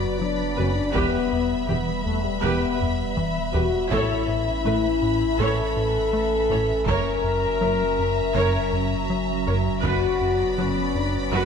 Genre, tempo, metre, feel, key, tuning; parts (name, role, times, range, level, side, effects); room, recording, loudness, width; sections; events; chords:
cinematic, hybrid orchestral and electronic film score; 81 BPM; 4/4; straight; E dorian; A4 = 440 Hz
warm symphonic violin section; second line; 0.0-11.4 s; D5 to B5; -30 LUFS; left 3 dB
mellow French horn section; sustained chords; 0.0-11.4 s; G3 to A#4; -25 LUFS; left 4 dB
warbly tape-like pad; sustained chords; 0.0-11.4 s; F#3 to E5; -30 LUFS; equal; chorus, built-in reverb
rubbery square bass; riff; 0.0-11.4 s; E2 to A3; -28 LUFS; left 2 dB
punchy sub bass; bass; 0.0-11.4 s; E1 to A1; -32 LUFS; right 1 dB
rich symphonic viola section; accompaniment; 0.6-11.4 s; F#4 to C#5; -28 LUFS; right 3 dB
warm studio double bass section; bass; 0.6-11.4 s; E1 to A1; -33 LUFS; right 5 dB
warm symphonic cello section; bass; 0.6-11.4 s; E2 to A2; -32 LUFS; right 4 dB
taiko ensemble; drums; 1.0-10.5 s; -33 LUFS; right 1 dB
moderate scoring stage reverb, RT60 1.9 s; -20 LUFS; side -6 dB against mid
0.0-11.4 A section
drum fill 2.8-3.9
0.0 Bm/F#; 1.0 Em; 3.9 Aadd9; 6.9 F#7; 9.8 Bm/F#